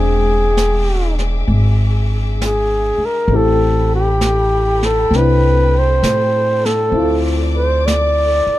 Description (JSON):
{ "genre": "jazz ballad", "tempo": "66 BPM", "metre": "4/4", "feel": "swing 66% on 8ths", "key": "unclear", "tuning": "A4 = 440 Hz", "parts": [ { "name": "mellow flugelhorn", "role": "melody", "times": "0.0-8.6 s", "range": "G4 to D5", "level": "-16 LUFS", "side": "equal", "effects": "none" }, { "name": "warm upright piano", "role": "accompaniment", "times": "0.0-8.6 s", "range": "G#3 to G5", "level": "-22 LUFS", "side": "left 4 dB", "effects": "none" }, { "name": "warm studio string section", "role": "sustained chords", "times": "0.0-8.6 s", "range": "G#4 to D6", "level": "-28 LUFS", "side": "left 3 dB", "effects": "none" }, { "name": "upright bass", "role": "bass", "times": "0.0-8.5 s", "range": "E1 to A2", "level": "-16 LUFS", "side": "equal", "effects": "none" }, { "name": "jazz brush drum kit", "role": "drums", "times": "0.6-8.6 s", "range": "brushed snare drum, hi-hat, snare drum", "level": "-27 LUFS", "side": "right 1 dB", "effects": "none" } ], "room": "little or no reverb", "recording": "dark, warm production", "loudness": "-13 LUFS", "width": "side -15 dB against mid", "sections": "0.0-8.6 A section", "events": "none", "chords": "0.0 E7alt; 3.3 Am9; 7.0 Dm7", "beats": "0.57 1.49 2.40 | 3.30 4.21 5.13 6.04 | 6.95 7.87" }